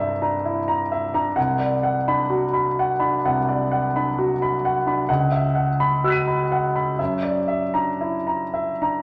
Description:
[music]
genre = classical, impressionist solo piano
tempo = 54-66 BPM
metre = 4/4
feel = rubato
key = B minor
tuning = A4 = 442 Hz
[part]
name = clear concert grand piano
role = solo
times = 0.0-9.0 s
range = C2 to D#7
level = -22 LUFS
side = equal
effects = none
[sound]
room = wet stone room reverb, RT60 1.0 s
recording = none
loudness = -22 LUFS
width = mono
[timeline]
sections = 0.0-9.0 A section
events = none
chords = 0.0 C9; 1.4 Bm/C; 5.1 C#m11; 7.0 F#aug7

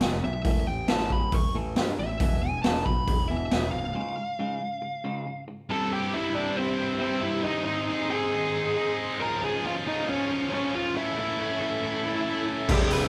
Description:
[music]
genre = quiet-loud alternative rock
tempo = 137 BPM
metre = 4/4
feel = straight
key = unclear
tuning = A4 = 440 Hz
[part]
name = twangy electric guitar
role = arpeggios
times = 0.0-5.7 s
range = Db2 to A3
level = -38 LUFS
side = equal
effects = none
[part]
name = fuzz fingered electric bass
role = bass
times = 0.0-3.9, 12.7-13.1 s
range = C1 to G2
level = -35 LUFS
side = equal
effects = overdrive
[part]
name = raw garage drum kit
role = drums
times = 0.0-3.6, 12.7-13.0 s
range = crash cymbal, hi-hat, kick drum, snare drum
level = -28 LUFS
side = equal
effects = none
[part]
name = fuzz lead guitar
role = melody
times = 0.2-13.1 s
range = C4 to Db6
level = -32 LUFS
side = equal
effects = distortion
[part]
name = soft string machine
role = sustained chords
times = 6.1-13.1 s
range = G4 to Db6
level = -40 LUFS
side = equal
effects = phaser, ensemble chorus
[part]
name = high-gain distorted guitar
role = riff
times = 5.7-13.1 s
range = C2 to A4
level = -31 LUFS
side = equal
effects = distortion
[part]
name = high-gain distorted guitar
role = riff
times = 12.7-13.1 s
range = C2 to E4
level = -34 LUFS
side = equal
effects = distortion
[part]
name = thick fuzz guitar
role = riff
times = 12.7-13.1 s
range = C2 to E4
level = -35 LUFS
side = equal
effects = none
[sound]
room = moderate large studio reverb, RT60 0.9 s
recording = band playing live in one room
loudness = -28 LUFS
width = mono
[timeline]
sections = 0.0-5.7 A section; 5.7-13.1 B section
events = break 4.0-5.7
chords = 0.5 A5; 2.2 E5; 4.0 Db; 5.7 C; 7.5 Ab; 9.2 Db; 10.9 A

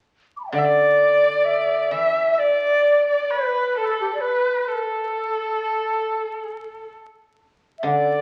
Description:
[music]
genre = chinese traditional, Chinese chamber ensemble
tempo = 66 BPM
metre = 4/4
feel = rubato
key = unclear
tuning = A4 = 440 Hz
[part]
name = xiao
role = melody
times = 0.4-8.2 s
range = G4 to D6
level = -23 LUFS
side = equal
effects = none
[part]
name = warm erhu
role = second line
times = 0.5-8.2 s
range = A4 to E5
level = -26 LUFS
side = equal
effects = none
[part]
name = guzheng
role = accompaniment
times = 0.5-8.2 s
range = D3 to E3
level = -27 LUFS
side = equal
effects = none
[sound]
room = wet recital hall reverb, RT60 1.5 s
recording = very old 78 rpm record, vinyl crackle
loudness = -21 LUFS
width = mono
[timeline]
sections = 0.1-8.2 A section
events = none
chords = none

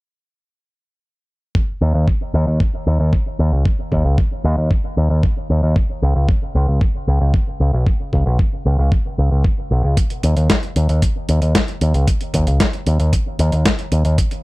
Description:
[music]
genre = italo disco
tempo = 114 BPM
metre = 4/4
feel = straight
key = unclear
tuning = A4 = 439 Hz
[part]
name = electronic kick drum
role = drums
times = 1.6-14.3 s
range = none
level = -18 LUFS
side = equal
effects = overdrive
[part]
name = picked electric bass with an envelope filter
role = bass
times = 1.8-14.2 s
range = B1 to Eb2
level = -16 LUFS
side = equal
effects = none
[part]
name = dusty soul sampler-style drum kit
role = drums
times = 10.0-14.4 s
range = hi-hat, snare drum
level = -20 LUFS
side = left 1 dB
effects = overdrive
[sound]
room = little or no reverb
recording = dry, close 1970s-style studio recording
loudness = -15 LUFS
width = side -22 dB against mid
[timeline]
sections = 1.6-14.4 A section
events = none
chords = none

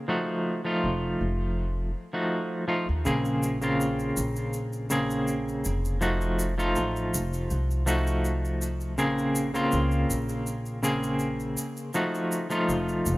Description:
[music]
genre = trip hop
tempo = 81 BPM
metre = 4/4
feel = straight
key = Bb minor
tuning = A4 = 441 Hz
[part]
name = semi-hollow electric guitar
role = accompaniment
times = 0.0-13.2 s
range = Db3 to Ab4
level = -26 LUFS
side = equal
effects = tremolo, low-pass filter, tape echo
[part]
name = upright bass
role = bass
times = 0.8-13.2 s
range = F1 to Eb2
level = -29 LUFS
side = equal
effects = tube saturation
[part]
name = egg shaker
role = percussion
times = 3.1-13.2 s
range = none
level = -37 LUFS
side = equal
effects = none
[sound]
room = light reverb, small room reverb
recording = rough home demo mix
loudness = -25 LUFS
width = side -19 dB against mid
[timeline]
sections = 0.0-13.2 A section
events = none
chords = 0.1 F7b9; 3.1 Bbm9; 6.0 F7b9; 9.0 Bbm9; 11.9 F7b9

